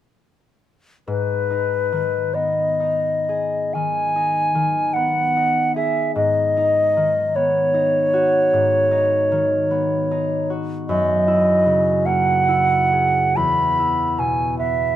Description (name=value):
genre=classical, impressionist duo for flute and harp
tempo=41-52 BPM (dotted quarters)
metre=12/8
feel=rubato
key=G# minor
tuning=A4 = 439 Hz
part: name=concert flute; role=melody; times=1.1-15.0 s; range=B4 to B5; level=-18 LUFS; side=equal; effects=none
part: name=concert harp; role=accompaniment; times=1.1-15.0 s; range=E2 to G#4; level=-23 LUFS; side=left 1 dB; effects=none
room=light reverb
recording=minimal, uncompressed stereo recording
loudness=-17 LUFS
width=side -12 dB against mid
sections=1.1-15.0 A section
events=none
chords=1.1 G#m; 6.2 Badd9/G#; 10.9 F#9; 13.4 E